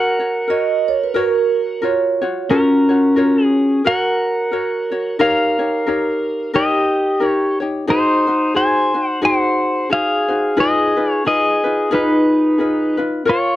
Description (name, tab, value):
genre	Hawaiian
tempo	89 BPM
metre	4/4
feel	swing 59% on 8ths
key	F# major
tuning	A4 = 439 Hz
part	pedal steel guitar	melody	0.0-13.6 s	C#4 to G#5	-16 LUFS	equal	none
part	ukulele	accompaniment	0.0-13.6 s	D#4 to C#5	-20 LUFS	left 2 dB	none
part	vibraphone with medium mallets	second line	0.5-2.5 s	A#4 to D#5	-17 LUFS	right 8 dB	none
room	light reverb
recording	dry, close 1970s-style studio recording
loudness	-14 LUFS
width	side -14 dB against mid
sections	0.0-2.5 A section; 2.5-13.6 A section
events	none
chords	0.0 F#maj7; 5.2 D#7; 7.9 G#7; 10.6 Fm7b5